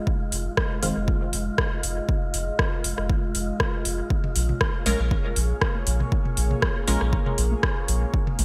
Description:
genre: dub techno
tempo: 119 BPM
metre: 4/4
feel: swing 54% on 16ths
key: F minor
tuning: A4 = 441 Hz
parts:
  - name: deep dark ambient pad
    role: sustained chords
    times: 0.0-8.4 s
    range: Ab3 to Eb5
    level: -35 LUFS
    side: equal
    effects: chorus, built-in reverb, sidechain pumping
  - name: wind-like tuned noise texture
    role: texture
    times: 0.0-8.4 s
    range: F4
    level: -42 LUFS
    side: equal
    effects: built-in reverb, sidechain pumping
  - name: electronic kick drum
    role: drums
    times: 0.1-8.2 s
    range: none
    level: -28 LUFS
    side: equal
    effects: overdrive
  - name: soft dub sub bass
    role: bass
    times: 0.3-8.4 s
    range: F1 to Bb1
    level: -28 LUFS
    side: equal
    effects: sidechain pumping
  - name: deep house drum kit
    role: drums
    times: 0.3-8.4 s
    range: hi-hat, rim click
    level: -30 LUFS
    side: equal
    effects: overdrive, gated reverb, dub echo
  - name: filtered dub chord stab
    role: stabs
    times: 0.8-0.9, 4.9-7.0 s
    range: Eb3 to Bb4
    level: -33 LUFS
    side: equal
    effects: phaser, sidechain pumping, dub echo
  - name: electronic toms and congas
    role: percussion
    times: 4.2-8.4 s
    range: none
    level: -35 LUFS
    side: equal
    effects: sidechain pumping on toms, sidechain pumping on perc, gated reverb
room: light reverb, digital ambience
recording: bright 1980s-style digital production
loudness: -24 LUFS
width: mono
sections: 0.0-8.4 A section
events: none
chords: 0.0 Fm7; 4.1 Bbm7

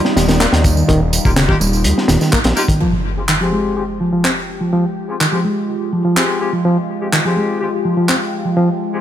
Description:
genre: breakbeat, breaks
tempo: 125 BPM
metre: 4/4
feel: straight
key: F minor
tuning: A4 = 438 Hz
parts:
  - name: phased analog pad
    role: sustained chords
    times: 0.0-9.0 s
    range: G3 to G4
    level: -23 LUFS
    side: left 2 dB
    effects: phaser, chorus, sidechain pumping
  - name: reed electric piano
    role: riff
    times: 0.0-8.7 s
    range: Db3 to C4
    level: -17 LUFS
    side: right 1 dB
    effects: tube saturation, low-pass filter, ping-pong delay
  - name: crunchy breakbeat drum kit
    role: drums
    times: 0.0-2.8 s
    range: hi-hat, kick drum, snare drum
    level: -16 LUFS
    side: equal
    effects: low-pass filter on kick, low-pass filter on hats, low-pass filter on snare, low-pass filter on room
  - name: fat analog bass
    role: bass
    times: 0.2-2.5 s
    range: Eb1 to Eb2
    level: -16 LUFS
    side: equal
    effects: none
  - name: electronic tambourine and handclaps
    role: drums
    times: 0.2-8.2 s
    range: none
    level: -20 LUFS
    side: right 1 dB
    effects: none
  - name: bright horn section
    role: stabs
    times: 1.2-9.0 s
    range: Ab3 to G4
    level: -23 LUFS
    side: left 4 dB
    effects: vintage 12-bit sampler grit, low-pass filter, ping-pong delay
  - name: impact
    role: sound effects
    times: 2.8-4.7 s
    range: none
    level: -24 LUFS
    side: equal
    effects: none
room: light reverb, studio reverb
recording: none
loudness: -13 LUFS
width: side -10 dB against mid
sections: 0.0-2.8 A section; 2.8-9.0 B section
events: impact 2.8-4.7; filter sweep on reed electric piano 2.8-9.0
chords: 0.0 Ebadd9; 2.8 Fmadd9

